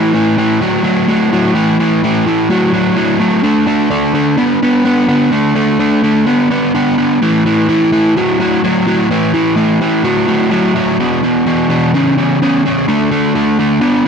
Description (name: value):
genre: rock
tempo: 127 BPM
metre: 4/4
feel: straight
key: A major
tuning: A4 = 437 Hz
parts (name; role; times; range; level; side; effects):
- overdriven electric guitar; solo; 0.0-14.1 s; E2 to B3; -10 LUFS; equal; none
room: digital ambience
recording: dry, close 1970s-style studio recording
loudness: -10 LUFS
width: side -6 dB against mid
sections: 0.0-14.1 A section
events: none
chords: 0.0 A5; 3.4 D5; 7.2 A5; 11.0 E5; 12.9 D5